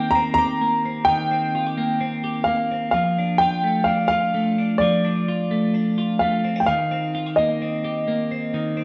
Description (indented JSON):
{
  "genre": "indie pop",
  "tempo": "128 BPM",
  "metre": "4/4",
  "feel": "straight",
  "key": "unclear",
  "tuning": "A4 = 440 Hz",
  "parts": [
    { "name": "dark upright piano", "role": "melody", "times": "0.0-8.8 s", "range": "D5 to Bb5", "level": "-24 LUFS", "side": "equal", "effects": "slapback echo" },
    { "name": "twelve-string electric guitar", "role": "arpeggios", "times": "0.0-8.8 s", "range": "Eb3 to G4", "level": "-25 LUFS", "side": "equal", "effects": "spring reverb, slapback echo" }
  ],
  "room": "light reverb",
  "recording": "dark, warm production",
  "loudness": "-21 LUFS",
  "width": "mono",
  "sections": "0.0-8.8 A section",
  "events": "none",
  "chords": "0.0 Cm7; 2.9 F6; 6.7 Cm7"
}